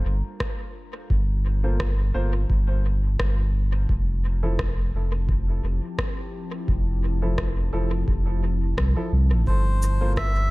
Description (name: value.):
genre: ambient dub.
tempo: 86 BPM.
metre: 4/4.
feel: swing 55% on 16ths.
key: G dorian.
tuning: A4 = 441 Hz.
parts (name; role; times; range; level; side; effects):
warbly tape-like pad; sustained chords; 0.1-10.5 s; F3 to A5; -36 LUFS; left 2 dB; chorus, built-in reverb, vintage 12-bit sampler grit.
warm sub bass; bass; 0.0-10.5 s; F1 to C2; -22 LUFS; equal; none.
electronic kick drum; drums; 0.4-10.3 s; none; -28 LUFS; equal; overdrive.
electronic rim click and shaker; drums; 0.4-10.3 s; none; -34 LUFS; equal; dub echo.
warm upright piano; stabs; 1.6-10.1 s; F3 to C5; -34 LUFS; right 1 dB; low-pass filter, dub echo.
melodica; melody; 9.5-10.5 s; C5 to E5; -28 LUFS; equal; none.
drifting glass-harmonics texture; texture; 9.5-10.5 s; none; barely audible; none; none.
room: digital ambience.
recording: echo-heavy mix.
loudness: -21 LUFS.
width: side -21 dB against mid.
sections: 0.0-10.5 A section.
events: fade-in on ambient pad 0.0-10.5.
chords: 0.0 Gm11; 3.9 Fmaj7; 9.5 Gm11.